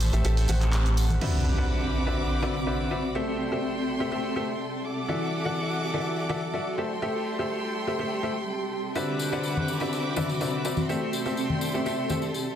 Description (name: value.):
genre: piano house.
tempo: 124 BPM.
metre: 4/4.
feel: straight.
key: A dorian.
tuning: A4 = 440 Hz.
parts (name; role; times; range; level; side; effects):
rich studio violin section; sustained chords; 0.0-12.6 s; C4 to D6; -34 LUFS; equal; none.
bright upright piano; riff; 0.0-12.2 s; D3 to F#5; -30 LUFS; left 1 dB; tape echo.
organ-like FM bass; bass; 0.0-1.2 s; A1; -22 LUFS; equal; none.
punchy analog drum machine; drums; 0.0-1.3 s; crash cymbal, handclaps, hi-hat, shaker; -35 LUFS; right 2 dB; none.
tambourine and congas; percussion; 0.0-1.2, 9.0-12.4 s; none; -32 LUFS; left 3 dB; none.
granular cloud pad; texture; 0.0-12.6 s; C4 to A5; -32 LUFS; right 1 dB; built-in reverb.
impact; sound effects; 1.2-3.1 s; none; -28 LUFS; equal; none.
room: moderate digital room reverb, RT60 1.1 s, digital ambience.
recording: dense, heavily limited modern master.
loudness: -25 LUFS.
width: side -10 dB against mid.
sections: 0.0-1.2 A section; 1.2-12.6 B section.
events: band accent 0.7; impact 1.2-3.1.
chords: 0.0 Am7; 1.2 D13; 3.1 Am7; 4.8 E9sus4; 6.8 Am7; 9.0 D13; 10.9 Am7.